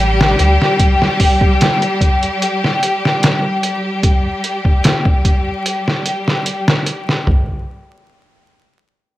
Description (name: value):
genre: trip hop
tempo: 74 BPM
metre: 4/4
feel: straight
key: unclear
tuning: A4 = 436 Hz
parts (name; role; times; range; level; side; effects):
- clear studio string section; sustained chords; 0.0-7.3 s; G3 to G4; -17 LUFS; left 1 dB; none
- warm sub bass; bass; 0.0-0.6 s; A1 to D2; -14 LUFS; equal; tube saturation
- trip hop sampler-style drum kit; drums; 0.2-7.5 s; hi-hat, kick drum, snare drum, toms; -14 LUFS; equal; none
room: light reverb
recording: vinyl crackle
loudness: -13 LUFS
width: side -15 dB against mid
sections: 0.0-7.3 A section; 7.3-9.2 B section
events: none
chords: 0.0 A7(no3); 0.8 N.C.